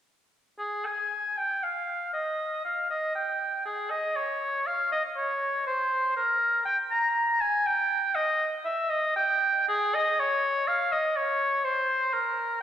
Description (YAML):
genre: classical, baroque-style fantasia for unaccompanied oboe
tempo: 60 BPM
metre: 3/4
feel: uneven beats, rubato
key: Ab major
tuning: A4 = 440 Hz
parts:
  - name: warm oboe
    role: solo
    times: 0.6-12.6 s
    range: Ab4 to Bb5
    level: -25 LUFS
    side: equal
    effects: none
room: wet scoring stage reverb, RT60 2.0 s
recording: recorded in a church or concert hall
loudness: -25 LUFS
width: side -10 dB against mid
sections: 0.6-12.6 A section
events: none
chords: none